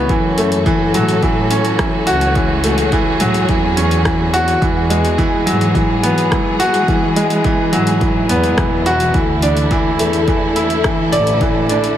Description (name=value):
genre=piano and strings electronica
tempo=106 BPM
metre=4/4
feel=straight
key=F# minor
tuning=A4 = 439 Hz
part: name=warm studio string section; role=sustained chords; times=0.0-12.0 s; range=D3 to A4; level=-20 LUFS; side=left 1 dB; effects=none
part: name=bright upright piano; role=riff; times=0.0-12.0 s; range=E3 to D5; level=-15 LUFS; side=right 1 dB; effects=tape echo
part: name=rich chamber double bass section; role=bass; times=0.1-12.0 s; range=E1 to A2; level=-20 LUFS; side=equal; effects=tube saturation, sidechain pumping
part: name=deep house drum kit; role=drums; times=0.1-11.9 s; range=hi-hat, rim click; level=-24 LUFS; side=equal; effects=none
part: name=electronic kick drum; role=drums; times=0.1-11.5 s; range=none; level=-19 LUFS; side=equal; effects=none
room=moderate concert hall reverb, RT60 2.0 s, small room ambience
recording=none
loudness=-12 LUFS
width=side -11 dB against mid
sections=0.0-12.0 A section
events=none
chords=0.1 F#m7; 4.6 Eadd9; 9.1 Dsus2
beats=| 0.09 0.66 1.22 1.79 | 2.35 2.92 3.49 4.05 | 4.62 5.18 5.75 6.32 | 6.88 7.45 8.02 8.58 | 9.15 9.71 10.28 10.85 | 11.41